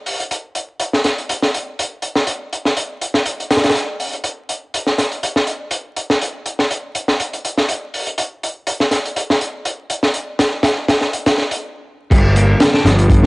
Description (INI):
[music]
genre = breakbeat, breaks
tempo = 122 BPM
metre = 4/4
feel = swing 54% on 16ths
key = G minor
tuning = A4 = 441 Hz
[part]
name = crunchy breakbeat drum kit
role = drums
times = 0.1-13.3 s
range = crash cymbal, hi-hat, kick drum, snare drum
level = -16 LUFS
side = equal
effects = high-pass filter on kick, cassette tape, high-pass filter on hats, high-pass filter on cymbals, high-pass filter on snare, high-pass filter on room
[part]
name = semi-hollow electric guitar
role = riff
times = 12.1-13.3 s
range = F3 to D4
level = -20 LUFS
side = equal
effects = analog delay
[part]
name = fuzz picked electric bass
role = bass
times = 12.1-13.3 s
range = G1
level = -12 LUFS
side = equal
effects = overdrive, tube saturation
[sound]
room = studio reverb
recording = home recording on cassette, vinyl crackle, nothing above 10.9 kHz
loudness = -16 LUFS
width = side -27 dB against mid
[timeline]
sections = 0.0-12.1 A section; 12.1-13.3 B section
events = stop 11.6-12.1; drop 12.1-13.3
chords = 0.0 N.C.; 12.1 Gm7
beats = | 0.31 0.80 1.29 1.78 | 2.28 2.77 3.26 3.75 | 4.24 4.74 5.23 5.72 | 6.21 6.70 7.19 7.69 | 8.18 8.67 9.16 9.65 | 10.14 10.64 11.13 11.62 | 12.11 12.60 13.10